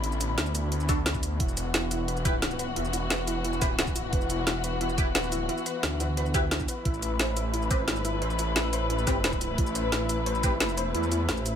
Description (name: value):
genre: dark technical drum and bass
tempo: 176 BPM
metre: 4/4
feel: straight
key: unclear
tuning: A4 = 444 Hz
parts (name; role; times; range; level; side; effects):
- dark studio string section; sustained chords; 0.0-11.6 s; D3 to B4; -32 LUFS; left 3 dB; sidechain pumping
- wide detuned saw bass; bass; 0.0-11.3 s; E1 to E2; -31 LUFS; equal; chorus, overdrive, sidechain pumping
- drum and bass drum kit; drums; 0.0-11.5 s; hi-hat, shaker, snare drum; -30 LUFS; equal; overdrive, studio reverb
- band-passed chord stab; stabs; 0.9-10.5 s; C4 to B4; -35 LUFS; right 1 dB; phaser, wide subtle chorus, dub echo
- electronic kick drum; drums; 0.9-10.5 s; none; -29 LUFS; equal; overdrive, studio reverb
- warbly dusty pluck; arpeggios; 1.4-11.6 s; E4 to C5; -35 LUFS; right 3 dB; lush chorus, sidechain pumping, dub echo
- pulsing pluck wobble bass; bass; 5.8-6.7, 11.3-11.6 s; A1 to D2; -29 LUFS; equal; chorus
room: light reverb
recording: none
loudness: -25 LUFS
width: side -8 dB against mid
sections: 0.0-11.6 A section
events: none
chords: 0.0 D5; 1.4 E5; 6.9 Am